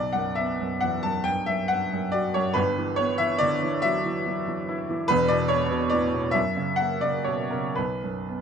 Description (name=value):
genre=classical, romantic nocturne for solo piano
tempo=39-49 BPM (dotted quarters)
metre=6/8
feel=rubato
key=B minor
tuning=A4 = 445 Hz
part: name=clear upright piano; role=solo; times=0.0-8.4 s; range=E1 to A5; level=-23 LUFS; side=equal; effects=none
room=light reverb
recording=none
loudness=-23 LUFS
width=side -7 dB against mid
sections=0.0-8.4 A section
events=none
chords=0.0 B5; 2.6 Em/G; 5.1 E5; 6.3 F#; 7.8 B5